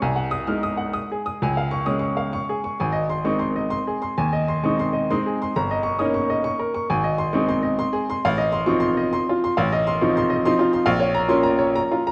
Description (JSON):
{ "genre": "classical, piano waltz", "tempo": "120-143 BPM", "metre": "3/4", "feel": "rubato", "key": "unclear", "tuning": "A4 = 440 Hz", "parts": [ { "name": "clear upright piano", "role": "solo", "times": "0.0-12.1 s", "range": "G1 to F6", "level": "-22 LUFS", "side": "equal", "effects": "none" } ], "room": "wet recital hall reverb, RT60 1.6 s", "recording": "dark, warm production", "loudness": "-22 LUFS", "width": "mono", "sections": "0.0-12.1 A section", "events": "none", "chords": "0.0 Ab7/C; 1.4 Db; 2.8 Ab; 5.5 Eb7/G; 6.9 Ab; 8.2 F7/A; 10.9 Bbm", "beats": "| 0.03 0.48 0.97 | 1.44 1.89 2.36 | 2.81 3.26 3.73 | 4.18 4.63 5.10 | 5.55 6.00 6.46 | 6.91 7.34 7.79 | 8.23 8.67 9.12 | 9.56 9.99 10.44 | 10.87 11.30 11.76" }